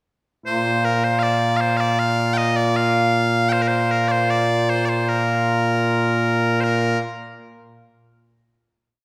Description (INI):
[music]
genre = scottish traditional, Scottish pipe music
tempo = 78 BPM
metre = 2/4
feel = straight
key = Bb major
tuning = A4 = 440 Hz
[part]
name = loud bright bagpipes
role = solo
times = 0.5-7.0 s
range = Bb2 to G5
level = -20 LUFS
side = equal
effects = none
[sound]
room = wet scoring stage reverb, RT60 1.7 s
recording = heard from further back in the room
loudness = -20 LUFS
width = mono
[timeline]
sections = 0.5-6.6 A section; 6.6-8.2 final note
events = none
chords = none